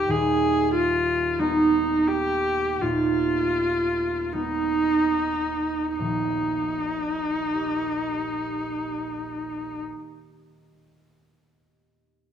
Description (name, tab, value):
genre	classical, romantic duo for viola and harp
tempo	34-47 BPM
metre	4/4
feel	rubato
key	Eb major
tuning	A4 = 439 Hz
part	rich viola	melody	0.0-9.8 s	Eb4 to Ab4	-24 LUFS	left 2 dB	none
part	concert harp	accompaniment	0.0-11.4 s	Eb1 to Eb5	-26 LUFS	right 4 dB	none
room	moderate recital hall reverb, RT60 1.6 s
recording	none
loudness	-22 LUFS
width	side -8 dB against mid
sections	0.0-6.0 A section; 6.0-12.2 B section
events	slowing down 0.0-6.0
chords	0.1 Abm/Eb; 6.0 Eb